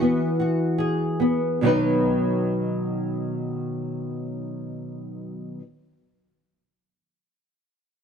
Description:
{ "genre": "pop", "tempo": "46 BPM (dotted quarters)", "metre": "6/8", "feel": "straight", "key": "B major", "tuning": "A4 = 440 Hz", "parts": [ { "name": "nylon-string guitar", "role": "accompaniment", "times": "0.0-5.6 s", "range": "B2 to B4", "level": "-22 LUFS", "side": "equal", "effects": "double-tracked left and right" } ], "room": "light reverb, studio reverb", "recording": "dark, warm production", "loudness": "-22 LUFS", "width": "side -7 dB against mid", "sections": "0.0-1.6 A section; 1.6-6.8 B section", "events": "slowing down 0.0-1.6", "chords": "0.0 Eadd9; 1.6 B", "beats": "0.38 | 1.62 2.92 | 4.23 5.54" }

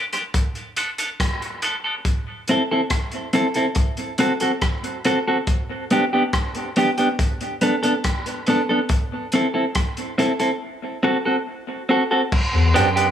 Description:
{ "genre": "dub reggae", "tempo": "70 BPM", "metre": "4/4", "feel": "straight", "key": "unclear", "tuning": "A4 = 441 Hz", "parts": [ { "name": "clean electric guitar", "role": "accompaniment", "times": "0.0-13.1 s", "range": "B3 to A4", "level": "-20 LUFS", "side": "equal", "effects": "high-pass filter, tape echo" }, { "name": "crunchy breakbeat drum kit", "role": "drums", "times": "0.1-13.1 s", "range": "crash cymbal, hi-hat, kick drum, rim click", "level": "-24 LUFS", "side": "equal", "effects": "none" }, { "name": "soft dub sub bass", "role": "bass", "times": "12.5-13.1 s", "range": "E2 to F#2", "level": "-18 LUFS", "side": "left 1 dB", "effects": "none" } ], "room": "moderate spring reverb, RT60 2.3 s", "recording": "none", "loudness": "-19 LUFS", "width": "side -9 dB against mid", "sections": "0.0-12.3 A section", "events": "none", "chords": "0.3 Bm7; 2.0 C6; 3.8 F#dim/C; 5.5 Bm; 7.2 Bm7; 8.9 C6; 10.6 F#dim/C; 12.3 Em7", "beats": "0.34 1.19 | 2.05 2.91 3.76 4.62 | 5.47 6.33 7.19 8.04 | 8.90 9.76 10.61 11.47 | 12.32" }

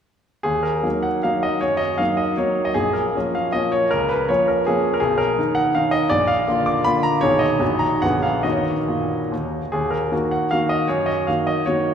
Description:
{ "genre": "classical, romantic triple-time dance for piano with dotted rhythms", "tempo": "130-174 BPM", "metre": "3/4", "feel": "rubato", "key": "Eb minor", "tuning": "A4 = 440 Hz", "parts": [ { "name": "bright grand piano", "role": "solo", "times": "0.4-11.9 s", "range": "Bb1 to D6", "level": "-18 LUFS", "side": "equal", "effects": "none" } ], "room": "wet cathedral reverb, RT60 5.1 s", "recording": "recorded in a church or concert hall", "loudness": "-18 LUFS", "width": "side -8 dB against mid", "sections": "0.4-9.7 A section; 9.7-11.9 A section", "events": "none", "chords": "0.4 Ebm; 1.6 Ebm/Gb; 2.8 Bbm; 3.9 Bbm/Db; 5.0 Bmaj7#11; 6.1 Bb; 7.2 Abm/Cb; 7.6 Ebm/Bb; 8.0 Bb7b9; 8.4 Ebm; 10.9 Ebm/Gb", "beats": "| 0.45 0.85 1.25 | 1.62 2.00 2.39 | 2.77 3.15 3.54 | 3.91 4.29 4.67 | 5.02 5.38 5.75 | 6.11 6.48 6.85 | 7.22 7.61 8.03 | 8.45 8.89 9.32 | 9.73 10.12 10.52 | 10.89 11.28 11.66" }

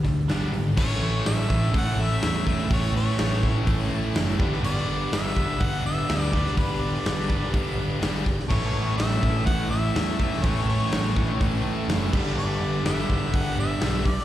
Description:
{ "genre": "classic rock", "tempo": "124 BPM", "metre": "4/4", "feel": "straight", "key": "A mixolydian", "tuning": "A4 = 440 Hz", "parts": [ { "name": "picked steel-string acoustic guitar", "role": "accompaniment", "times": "0.0-14.2 s", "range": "G2 to A4", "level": "-37 LUFS", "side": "left 1 dB", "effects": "none" }, { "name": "crunchy overdriven guitar", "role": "riff", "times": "0.0-14.0 s", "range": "A2 to B4", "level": "-32 LUFS", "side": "right 10 dB", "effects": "slapback echo" }, { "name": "tight distorted guitar", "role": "riff", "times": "0.0-14.1 s", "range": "G2 to A3", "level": "-31 LUFS", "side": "left 7 dB", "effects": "distortion, slapback echo" }, { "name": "picked electric bass", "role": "bass", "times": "0.0-14.2 s", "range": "F#1 to E2", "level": "-27 LUFS", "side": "equal", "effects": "none" }, { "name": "big rock drum kit", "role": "drums", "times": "0.0-14.2 s", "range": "crash cymbal, hi-hat, kick drum, snare drum", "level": "-27 LUFS", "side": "equal", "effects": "none" }, { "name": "tonewheel organ", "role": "sustained chords", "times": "0.5-14.2 s", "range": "A3 to D5", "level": "-40 LUFS", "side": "equal", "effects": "none" }, { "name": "clear harmonica", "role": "melody", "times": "0.8-14.2 s", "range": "B4 to F#5", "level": "-31 LUFS", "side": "left 1 dB", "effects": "slapback echo" }, { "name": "fuzz guitar", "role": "riff", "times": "8.5-14.1 s", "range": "G2 to A3", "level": "-31 LUFS", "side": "equal", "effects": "distortion, slapback echo" } ], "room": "little or no reverb", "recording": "live gig heard through the venue's PA, recital hall reverb", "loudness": "-22 LUFS", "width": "side -13 dB against mid", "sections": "0.8-14.2 A section", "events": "none", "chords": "0.0 G; 0.8 A; 4.4 G; 8.5 A; 12.1 G", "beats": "0.28 | 0.77 1.25 1.74 2.22 | 2.71 3.19 3.67 4.16 | 4.64 5.12 5.61 6.09 | 6.57 7.05 7.54 8.02 | 8.50 8.98 9.46 9.95 | 10.43 10.91 11.39 11.88 | 12.36 12.84 13.32 13.80" }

